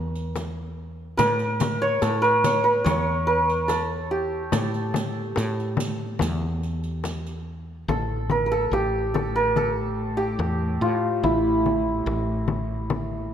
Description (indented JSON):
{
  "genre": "Persian modal ensemble",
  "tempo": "72 BPM",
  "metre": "4/4",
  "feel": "straight",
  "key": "A dastgah homayun",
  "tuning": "A4 = 438 Hz",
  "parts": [
    { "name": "santur", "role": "melody", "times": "0.0-13.3 s", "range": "E4 to C#5", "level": "-23 LUFS", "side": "right 1 dB", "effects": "none" },
    { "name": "woody fretless electric bass", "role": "bass", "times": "0.0-13.3 s", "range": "A1 to A2", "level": "-28 LUFS", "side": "equal", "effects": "none" },
    { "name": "riq", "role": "percussion", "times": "0.2-7.4 s", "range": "none", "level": "-35 LUFS", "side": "right 4 dB", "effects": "none" },
    { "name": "frame drum", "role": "percussion", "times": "0.4-13.1 s", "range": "none", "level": "-30 LUFS", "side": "left 5 dB", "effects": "none" },
    { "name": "muted cello", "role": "drone", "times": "7.9-13.3 s", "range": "A2", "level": "-32 LUFS", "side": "left 2 dB", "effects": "none" }
  ],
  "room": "moderate concert hall reverb, RT60 2.2 s",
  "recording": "none",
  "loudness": "-22 LUFS",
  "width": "side -9 dB against mid",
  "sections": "0.0-7.9 A section; 7.9-13.3 B section",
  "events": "none",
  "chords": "none"
}